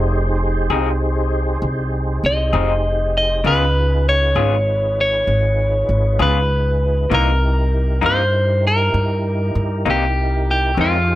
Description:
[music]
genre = blues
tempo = 66 BPM (dotted quarters)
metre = 12/8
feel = straight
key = unclear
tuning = A4 = 440 Hz
[part]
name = tonewheel organ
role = sustained chords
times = 0.0-11.2 s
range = Eb4 to E5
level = -26 LUFS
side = right 1 dB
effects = slow rotary speaker, overdrive, chorus vibrato
[part]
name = upright bass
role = bass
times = 0.0-11.2 s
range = F1 to G2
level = -18 LUFS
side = equal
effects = none
[part]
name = electric guitar through a small old amp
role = accompaniment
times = 0.7-11.0 s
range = F2 to Ab4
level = -20 LUFS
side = left 5 dB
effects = harmonic tremolo
[part]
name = electric guitar at the edge of break-up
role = melody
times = 2.3-11.2 s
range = F4 to Eb5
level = -19 LUFS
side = equal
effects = spring reverb
[sound]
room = little or no reverb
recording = none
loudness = -15 LUFS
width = side -15 dB against mid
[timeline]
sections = 0.0-11.2 A section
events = none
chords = 0.0 Fm7; 3.4 Db7; 7.1 C7#9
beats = 0.70 1.62 2.53 | 3.45 4.36 5.28 6.19 | 7.11 8.02 8.94 9.85 | 10.76

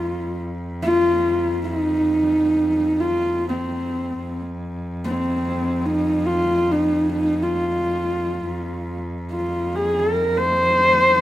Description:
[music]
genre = mongolian traditional, Mongolian folk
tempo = free time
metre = none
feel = none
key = unclear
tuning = A4 = 438 Hz
[part]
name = dark horsehead fiddle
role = melody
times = 0.0-11.2 s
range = C4 to C5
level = -19 LUFS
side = equal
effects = none
[part]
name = rich cello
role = drone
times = 0.0-11.2 s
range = F2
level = -27 LUFS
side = equal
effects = none
[sound]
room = moderate recital hall reverb, RT60 1.8 s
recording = close, detailed microphones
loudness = -19 LUFS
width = side -14 dB against mid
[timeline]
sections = 0.0-11.2 A section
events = none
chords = none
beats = free time

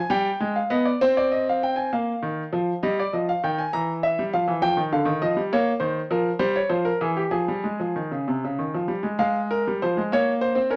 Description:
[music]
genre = classical, baroque-style two-part invention for grand piano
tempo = 66 BPM (dotted quarters)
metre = 6/8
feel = straight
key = F minor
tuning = A4 = 442 Hz
[part]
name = clear concert grand piano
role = solo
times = 0.0-10.8 s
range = C3 to Bb5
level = -24 LUFS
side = equal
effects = none
[sound]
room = moderate stone room reverb, RT60 0.9 s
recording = none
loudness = -24 LUFS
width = mono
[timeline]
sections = 0.0-1.9 A section; 1.9-9.2 B section; 9.2-10.8 A section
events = none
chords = 0.1 G7; 1.0 Cm; 1.9 Bb5; 2.8 Eb; 3.7 Edim; 4.6 Ebmaj9; 5.5 Bbm; 6.4 C7; 7.3 Fm; 9.2 Fm/Ab; 10.1 Bbm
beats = | 0.10 1.01 | 1.92 2.83 | 3.73 4.63 | 5.52 6.41 | 7.34 8.28 | 9.22 10.12

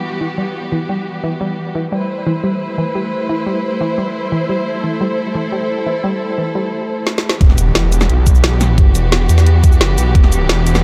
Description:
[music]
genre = dark technical drum and bass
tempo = 175 BPM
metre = 4/4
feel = straight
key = E minor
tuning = A4 = 439 Hz
[part]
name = rich studio string section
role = sustained chords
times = 0.0-10.8 s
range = E3 to C5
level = -23 LUFS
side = equal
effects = sidechain pumping
[part]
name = analog pluck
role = arpeggios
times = 0.2-6.7 s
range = E3 to G3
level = -23 LUFS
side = equal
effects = chorus, phaser, sidechain pumping, tape echo
[part]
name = drum and bass drum kit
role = drums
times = 7.1-10.8 s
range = cabasa, hi-hat, snare drum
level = -20 LUFS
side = equal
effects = low-pass filter on snare, low-pass filter on hats, low-pass filter on toms, low-pass filter on perc, low-pass filter on room
[part]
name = detuned saw bass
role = bass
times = 7.4-10.8 s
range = E1 to E2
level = -15 LUFS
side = equal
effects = chorus, tube saturation, sidechain pumping
[part]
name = electronic kick drum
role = drums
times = 7.4-10.2 s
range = none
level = -12 LUFS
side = equal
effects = overdrive
[part]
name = impact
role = sound effects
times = 7.4-8.8 s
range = none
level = -23 LUFS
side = equal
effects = none
[sound]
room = light reverb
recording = dark, warm production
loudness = -15 LUFS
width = mono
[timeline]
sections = 0.0-7.4 A section; 7.4-10.8 B section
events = drum fill 7.1-7.4; drop 7.4-10.8; impact 7.4-8.8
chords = 0.0 Emadd9; 1.9 Am; 7.4 Emadd9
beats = 0.21 | 0.55 0.89 1.24 1.58 | 1.92 2.27 2.61 2.95 | 3.29 3.64 3.98 4.32 | 4.67 5.01 5.35 5.69 | 6.04 6.38 6.72 7.07 | 7.41 7.75 8.09 8.44 | 8.78 9.12 9.46 9.81 | 10.15 10.49 10.84

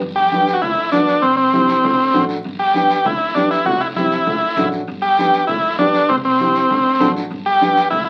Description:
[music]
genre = latin, cumbia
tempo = 197 BPM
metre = 4/4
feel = straight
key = G major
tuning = A4 = 440 Hz
[part]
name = upright bass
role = bass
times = 0.0-8.1 s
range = G1 to D2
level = -34 LUFS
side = equal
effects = none
[part]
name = congas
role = percussion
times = 0.0-8.1 s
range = none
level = -28 LUFS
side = equal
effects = none
[part]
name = guiro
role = percussion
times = 0.0-8.1 s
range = none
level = -36 LUFS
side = equal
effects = none
[part]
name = overdriven combo organ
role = melody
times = 0.2-8.1 s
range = C4 to G4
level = -17 LUFS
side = equal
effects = none
[part]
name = dark upright piano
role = accompaniment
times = 0.3-7.8 s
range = A3 to A5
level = -24 LUFS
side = equal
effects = none
[sound]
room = wet studio reverb, RT60 0.5 s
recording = very old 78 rpm record, vinyl crackle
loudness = -16 LUFS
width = mono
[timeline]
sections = 0.0-8.1 A section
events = upright piano fill 6.9-7.3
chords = 0.0 G; 1.2 C; 1.8 D; 2.4 G; 3.7 C; 4.3 D; 4.9 G; 6.1 C; 6.7 D; 7.3 G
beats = | 0.01 0.32 0.62 0.93 | 1.23 1.53 1.84 2.14 | 2.45 2.75 3.06 3.36 | 3.66 3.97 4.27 4.58 | 4.88 5.18 5.49 5.79 | 6.10 6.40 6.71 7.01 | 7.31 7.62 7.92

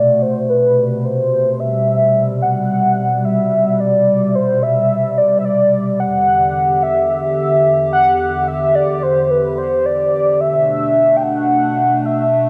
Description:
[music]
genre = IDM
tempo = 109 BPM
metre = 4/4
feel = swing 56% on 16ths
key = A dorian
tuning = A4 = 440 Hz
[part]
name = warm velvety synth lead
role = melody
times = 0.0-12.5 s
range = B4 to G5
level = -16 LUFS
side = equal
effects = chorus, delay
[part]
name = warbly tape-like pad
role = sustained chords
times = 0.0-12.5 s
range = E2 to G4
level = -21 LUFS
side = equal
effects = chorus, built-in reverb
[sound]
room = wet plate reverb, RT60 3.4 s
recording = none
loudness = -15 LUFS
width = mono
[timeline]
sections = 0.0-12.5 A section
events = none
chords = 0.0 Amadd9; 6.0 Em7; 10.4 Bm7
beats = 0.49 1.04 | 1.59 2.15 2.70 3.25 | 3.80 4.35 4.90 5.45 | 6.00 6.55 7.10 7.65 | 8.20 8.75 9.30 9.85 | 10.40 10.95 11.50 12.05

